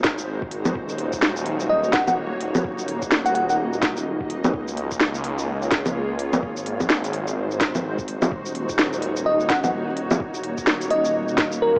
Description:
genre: future garage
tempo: 127 BPM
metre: 4/4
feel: swing 60% on 16ths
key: Eb dorian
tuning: A4 = 441 Hz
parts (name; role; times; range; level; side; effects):
- granular cloud pad; sustained chords; 0.0-11.8 s; Ab3 to Eb5; -31 LUFS; equal; built-in reverb, sidechain pumping
- swelling detuned saw bass; bass; 0.0-11.8 s; Eb1 to Db2; -31 LUFS; equal; sidechain pumping
- electronic kick drum; drums; 0.0-11.8 s; none; -38 LUFS; equal; none
- organic electronic drum kit; drums; 0.0-11.6 s; bongos, hi-hat, shaker, snare drum; -25 LUFS; equal; none
- bell-like FM electric piano; melody; 1.7-3.6, 9.3-11.8 s; Bb4 to Gb5; -25 LUFS; equal; chorus, cassette tape, tape echo
room: moderate spring reverb, RT60 2.4 s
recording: home recording on cassette, vinyl crackle, small speaker sound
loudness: -23 LUFS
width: mono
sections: 0.0-11.8 A section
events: none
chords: 0.0 Ab7; 0.8 Ebm7; 4.5 Db6; 6.4 Ab7; 8.3 Ebm7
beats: 0.28 | 0.75 1.23 1.70 2.17 | 2.64 3.12 3.59 4.06 | 4.53 5.01 5.48 5.95 | 6.42 6.90 7.37 7.84 | 8.31 8.79 9.26 9.73 | 10.20 10.68 11.15 11.62

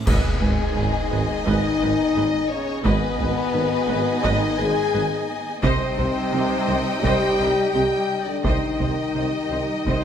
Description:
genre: cinematic, epic orchestral film score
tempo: 86 BPM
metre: 4/4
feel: straight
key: unclear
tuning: A4 = 440 Hz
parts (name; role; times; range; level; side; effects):
- warm symphonic violin section; melody; 0.0-10.0 s; G#4 to G#5; -30 LUFS; left 5 dB; none
- clear symphonic violin section; second line; 0.0-10.0 s; D#5 to G#5; -31 LUFS; left 3 dB; none
- rich symphonic viola section; accompaniment; 0.0-10.0 s; G4 to D#5; -30 LUFS; right 2 dB; none
- mellow trombone section; sustained chords; 0.0-10.0 s; G#2 to G#3; -32 LUFS; right 3 dB; none
- reverse cymbal and impact; sound effects; 0.0-2.9 s; none; -35 LUFS; equal; none
- warm French horn section; sustained chords; 0.1-10.0 s; G#3 to G#4; -24 LUFS; left 4 dB; none
- warm symphonic string section; sustained chords; 0.1-10.0 s; G3 to D#5; -30 LUFS; right 1 dB; none
- rich symphonic cello section; bass; 0.1-9.9 s; G#2 to C3; -28 LUFS; right 3 dB; none
- warm symphonic double bass section; bass; 0.1-9.9 s; G#1 to C2; -30 LUFS; right 4 dB; none
- warm tuba; bass; 0.1-10.0 s; G#1 to C2; -30 LUFS; right 4 dB; none
- solo taiko drums; drums; 0.1-10.0 s; none; -26 LUFS; equal; none
- clash cymbals and concert bass drum; percussion; 0.1-1.4 s; none; -27 LUFS; equal; none
room: moderate scoring stage reverb, RT60 1.7 s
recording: none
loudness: -19 LUFS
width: side -8 dB against mid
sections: 0.1-10.0 A section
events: band accent 0.1-0.8; impact 0.1-2.9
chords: 0.1 G#m; 5.6 Cm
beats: | 0.07 0.76 1.47 2.16 | 2.85 3.54 4.24 4.94 | 5.63 6.33 7.03 7.74 | 8.44 9.15 9.86

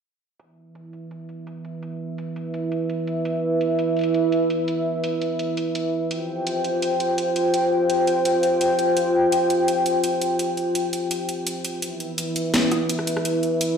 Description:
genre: half-time drum and bass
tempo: 168 BPM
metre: 4/4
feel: half-time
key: E phrygian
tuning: A4 = 439 Hz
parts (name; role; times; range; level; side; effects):
- dark analog pad; sustained chords; 0.4-13.8 s; E4 to G5; -21 LUFS; equal; chorus
- drum and bass drum kit; drums; 0.4-13.7 s; hi-hat, rim click, snare drum; -28 LUFS; equal; overdrive, low-pass filter on hats, low-pass filter on snare
room: moderate digital room reverb, RT60 1.1 s, digital ambience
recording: played on a big sound system in a bare room, large studio reverb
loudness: -20 LUFS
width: side -6 dB against mid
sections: 0.4-11.8 A section; 11.8-13.8 B section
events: filter sweep on drum 0.4-11.8; build-up 11.8-13.8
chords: 0.4 E5; 6.1 Fsus2; 11.8 E5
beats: | 0.40 0.75 1.11 1.47 | 1.82 2.18 2.54 2.90 | 3.25 3.61 3.97 4.32 | 4.68 5.04 5.40 5.75 | 6.11 6.47 6.82 7.18 | 7.54 7.90 8.25 8.61 | 8.97 9.32 9.68 10.04 | 10.40 10.75 11.11 11.47 | 11.82 12.18 12.54 12.90 | 13.25 13.61

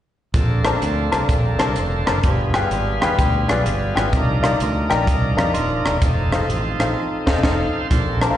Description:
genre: uptempo gospel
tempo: 127 BPM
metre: 4/4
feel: swing 65% on 8ths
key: Bb major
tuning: A4 = 436 Hz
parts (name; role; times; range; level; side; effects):
- clear baby grand piano; accompaniment; 0.3-8.4 s; G2 to C6; -23 LUFS; left 4 dB; slapback echo
- bright tonewheel organ; sustained chords; 0.3-8.4 s; D3 to G5; -24 LUFS; right 2 dB; slow rotary speaker, overdrive
- modern bright fingered electric bass; bass; 0.3-8.3 s; Eb1 to F2; -22 LUFS; equal; none
- crisp fusion drum kit; drums; 0.3-8.3 s; crash cymbal, hi-hat, kick drum, rim click, snare drum; -21 LUFS; equal; none
room: light reverb, small room reverb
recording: live gig heard through the venue's PA, recital hall reverb, nothing above 10.4 kHz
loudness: -17 LUFS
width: side -12 dB against mid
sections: 0.3-7.9 A section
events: grand piano fill 2.7-4.1; band accent 7.0-7.9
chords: 0.3 Bbmaj9; 2.2 G7b9; 4.1 Cm11; 6.0 F7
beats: | 0.34 0.82 1.29 1.76 | 2.24 2.71 3.18 3.65 | 4.13 4.60 5.07 5.54 | 6.02 6.49 6.96 7.43 | 7.91

